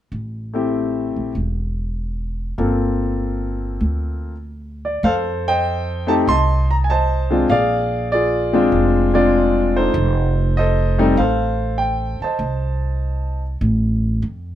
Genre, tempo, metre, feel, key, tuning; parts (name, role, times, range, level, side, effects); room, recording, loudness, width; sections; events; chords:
jazz piano trio; 98 BPM; 4/4; swing 69% on 8ths; F mixolydian; A4 = 441 Hz
upright bass; bass; 0.1-14.6 s; E1 to F2; -21 LUFS; right 1 dB
warm concert grand piano; melody; 0.5-13.4 s; G3 to C6; -18 LUFS; left 1 dB
light reverb; -17 LUFS; side -12 dB against mid
0.1-5.0 A section; 5.0-14.6 B section
0.1 Am7; 2.6 Gm11; 5.0 F7; 7.5 Bb7; 9.9 F7